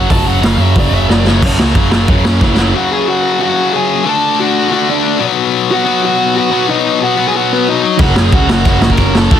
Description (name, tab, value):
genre	punk rock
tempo	182 BPM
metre	4/4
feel	straight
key	unclear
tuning	A4 = 439 Hz
part	bluesy overdriven lead guitar	melody	0.0-9.4 s	B3 to A#5	-16 LUFS	right 3 dB	distortion
part	distorted electric guitar	riff	0.0-2.7, 8.0-9.4 s	F#2 to D4	-19 LUFS	right 18 dB	overdrive
part	tight distorted guitar	riff	0.0-9.4 s	F#2 to D4	-14 LUFS	left 11 dB	distortion
part	overdriven picked electric bass	bass	0.0-2.7, 8.0-9.4 s	F#1 to F#2	-14 LUFS	equal	none
part	raw garage drum kit	drums	0.1-2.6, 8.0-9.4 s	crash cymbal, hi-hat, kick drum, ride cymbal, snare drum	-14 LUFS	equal	none
room	little or no reverb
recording	dense, heavily limited modern master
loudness	-10 LUFS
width	side -9 dB against mid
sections	0.0-1.4 A section; 1.4-2.7 B section; 2.7-9.4 C section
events	half time 0.0-1.4; lead electric guitar solo 0.0-1.4; drum fill 1.1-1.4, 2.4-2.7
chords	0.0 F#5; 4.1 D; 5.2 B; 8.0 F#